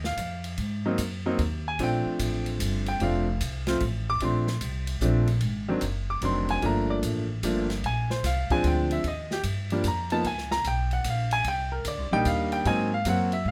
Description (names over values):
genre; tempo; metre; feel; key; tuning
jazz, small-group swing and bop; 149 BPM; 3/4; swing 66% on 8ths; Bb major; A4 = 439 Hz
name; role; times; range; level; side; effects
clear baby grand piano; accompaniment; 0.0-13.5 s; Eb3 to D6; -29 LUFS; equal; none
upright bass; bass; 0.0-13.5 s; F1 to Ab2; -31 LUFS; equal; none
open jazz drum kit; drums; 0.0-13.4 s; hi-hat, kick drum, ride cymbal, snare drum; -38 LUFS; equal; none
room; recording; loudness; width
light reverb; close, detailed microphones; -27 LUFS; mono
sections
0.0-4.2 A section; 4.2-13.5 A section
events
none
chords
0.0 Ebsus2; 0.6 Ab9; 1.8 Bbmaj9 (rootless); 4.2 Bbmaj9; 5.4 Ab7#11; 6.6 Gm9; 7.8 Bb9; 9.0 Ebadd9; 10.2 Bbm7; 11.5 Cm9; 12.7 Ab9